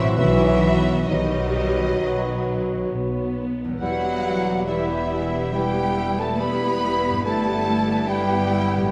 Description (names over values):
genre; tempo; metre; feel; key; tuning
classical, slow romantic movement for symphony orchestra; 65-73 BPM; 4/4; rubato; E minor; A4 = 440 Hz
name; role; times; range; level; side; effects
rich studio violin section; melody; 0.0-8.9 s; D#5 to B5; -34 LUFS; equal; none
clear clarinet; second line; 0.0-8.9 s; E4 to F#4; -33 LUFS; equal; none
dark cor anglais; second line; 0.0-8.9 s; B4 to C5; -34 LUFS; equal; none
mellow concert flute; second line; 0.0-8.9 s; D#5 to B5; -32 LUFS; equal; none
rich studio violin section; second line; 0.0-8.9 s; D#4 to B4; -37 LUFS; equal; none
dark bassoon; accompaniment; 0.0-8.9 s; F#3 to G3; -31 LUFS; equal; none
rich studio viola section; accompaniment; 0.0-8.9 s; F#3 to G4; -33 LUFS; equal; none
clear trombone section; sustained chords; 0.0-8.9 s; E3 to C4; -35 LUFS; equal; none
warm French horn section; sustained chords; 0.0-8.9 s; D#3 to B3; -29 LUFS; equal; none
concert harp; arpeggios; 0.0-8.9 s; E2 to C5; -34 LUFS; equal; none
clear studio cello section; bass; 0.0-8.9 s; D#3 to B3; -33 LUFS; equal; none
rich studio double bass section; bass; 0.0-8.9 s; E1 to B1; -31 LUFS; equal; none
timpani; percussion; 0.2-1.5 s; B2; -30 LUFS; equal; none
room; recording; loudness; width
wet recital hall reverb, RT60 1.5 s; none; -22 LUFS; mono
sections
0.0-8.9 A section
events
none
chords
0.2 B; 3.8 Em; 7.3 Em/G